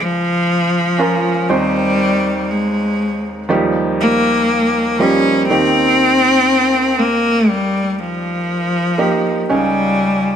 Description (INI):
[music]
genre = pop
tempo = 60 BPM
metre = 4/4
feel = straight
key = unclear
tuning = A4 = 439 Hz
[part]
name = clear cello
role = melody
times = 0.0-10.4 s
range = F3 to Db4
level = -14 LUFS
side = left 1 dB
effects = none
[part]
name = felt-muted upright piano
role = accompaniment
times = 0.0-10.4 s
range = Db2 to C5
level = -18 LUFS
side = right 2 dB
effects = none
[sound]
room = moderate plate reverb, RT60 3.3 s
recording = none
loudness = -13 LUFS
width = side -8 dB against mid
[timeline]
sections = 0.0-10.4 A section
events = none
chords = 0.0 Db; 1.5 Ab/Eb; 3.5 Ebadd9; 5.5 Eb; 9.5 Dbsus2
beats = 0.49 | 1.49 2.49 3.49 4.49 | 5.49 6.49 7.49 8.49 | 9.49